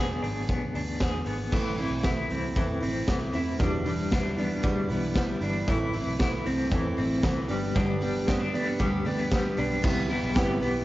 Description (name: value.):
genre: jangly indie pop.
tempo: 116 BPM.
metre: 4/4.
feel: straight.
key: unclear.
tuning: A4 = 441 Hz.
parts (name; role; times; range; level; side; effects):
electric guitar through a small old amp; arpeggios; 0.0-10.8 s; E3 to G#4; -31 LUFS; left 2 dB; tremolo, tape echo.
vintage muted picked electric bass; bass; 0.0-10.8 s; E1 to E2; -34 LUFS; equal; none.
raw garage drum kit; drums; 0.2-10.7 s; crash cymbal, hi-hat, kick drum, snare drum; -29 LUFS; equal; none.
picked steel-string acoustic guitar; accompaniment; 1.5-10.8 s; E2 to G4; -29 LUFS; right 2 dB; none.
room: light reverb.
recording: home recording on cassette, nothing above 7.6 kHz.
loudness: -25 LUFS.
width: side -16 dB against mid.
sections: 0.0-1.5 A section; 1.5-9.8 B section; 9.8-10.8 C section.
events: none.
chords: 0.0 E7; 1.5 Am; 3.6 Em7; 5.7 Am; 7.5 G; 9.8 Cmaj7.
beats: 0.49 1.01 | 1.53 2.05 2.57 3.08 | 3.60 4.12 4.64 5.16 | 5.68 6.20 6.72 7.24 | 7.76 8.28 8.80 9.32 | 9.84 10.36.